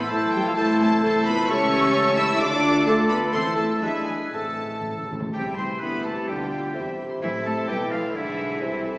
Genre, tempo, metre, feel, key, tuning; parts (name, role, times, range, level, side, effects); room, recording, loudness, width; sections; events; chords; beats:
quick classical-period movement for symphony orchestra; 128 BPM; 2/4; rubato; A minor, C major from 5.3 s; A4 = 440 Hz
bright clarinet; second line; 0.0-5.1 s; C4 to G4; -32 LUFS; equal
bright small flute group; second line; 0.0-8.8 s; E5 to E6; -32 LUFS; equal
clear oboe; second line; 0.0-8.8 s; E4 to C5; -31 LUFS; equal
warm studio violin section; second line; 0.0-9.0 s; A4 to E6; -35 LUFS; equal
dark studio viola section; accompaniment; 0.0-9.0 s; E4 to E5; -28 LUFS; equal
mellow bassoon; accompaniment; 0.0-9.0 s; C3 to A3; -30 LUFS; equal
dark French horn section; sustained chords; 0.0-8.8 s; G#2 to G4; -31 LUFS; left 1 dB
mellow trumpet; stabs; 0.0-5.1 s; G#4 to A4; -30 LUFS; equal
dark studio double bass section; bass; 0.0-9.0 s; E1 to E2; -34 LUFS; equal
warm studio cello section; bass; 0.0-8.8 s; E3 to E4; -27 LUFS; equal
timpani; percussion; 0.0-0.3, 3.3-5.3 s; E2 to A2; -37 LUFS; equal
dark studio violin section; melody; 0.1-8.8 s; E5 to E6; -30 LUFS; equal
wet scoring stage reverb, RT60 1.9 s; heard from further back in the room, small speaker sound; -20 LUFS; side -22 dB against mid
0.0-5.3 A section; 5.3-9.0 B section
timpani fill 4.3-5.3
0.0 Am; 0.6 Am/C; 1.5 A7/C#; 2.4 Dm; 3.3 Am/E; 3.8 E7; 4.3 Am; 5.3 C; 6.3 G7/D; 6.8 C/E; 7.2 Am; 8.2 E7/B
0.10 | 0.57 1.03 | 1.49 1.94 | 2.41 2.88 | 3.35 3.83 | 4.33 4.84 | 5.33 5.81 | 6.29 6.75 | 7.22 7.69 | 8.15 8.61